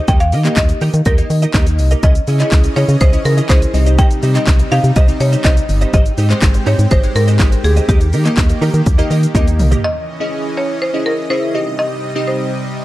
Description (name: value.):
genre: dance-pop.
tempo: 123 BPM.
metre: 4/4.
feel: straight.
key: unclear.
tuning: A4 = 440 Hz.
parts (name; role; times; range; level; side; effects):
buzzing marimba with hard mallets; melody; 0.0-12.8 s; G4 to G5; -20 LUFS; equal; digital delay.
direct-recorded clean electric guitar; riff; 0.0-9.9 s; Db4 to Eb5; -24 LUFS; right 4 dB; ensemble chorus.
organ-like FM bass; bass; 0.1-9.8 s; G1 to Eb3; -14 LUFS; equal; sidechain pumping.
house drum kit; drums; 0.1-9.8 s; handclaps, hi-hat, kick drum, shaker, snare drum, toms; -14 LUFS; equal; overdrive.
glassy digital keys; accompaniment; 0.4-12.5 s; Ab3 to Fb5; -22 LUFS; left 1 dB; chorus, sidechain pumping.
supersaw pad; sustained chords; 2.0-12.8 s; C3 to Eb5; -24 LUFS; equal; sidechain pumping.
room: little or no reverb.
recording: dark, warm production.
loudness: -11 LUFS.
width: side -16 dB against mid.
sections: 0.0-9.8 A section; 9.8-12.8 A section.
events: drum fill 9.3-9.8.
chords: 0.1 Eb; 2.0 Dbmadd9; 3.7 Cm; 5.9 Abmaj7; 7.9 Eb; 9.8 Dbmadd9; 11.5 Cm.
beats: | 0.08 0.57 1.06 1.54 | 2.03 2.52 3.01 3.50 | 3.98 4.47 4.96 5.45 | 5.93 6.42 6.91 7.40 | 7.89 8.37 8.86 9.35 | 9.84 10.33 10.81 11.30 | 11.79 12.28 12.77.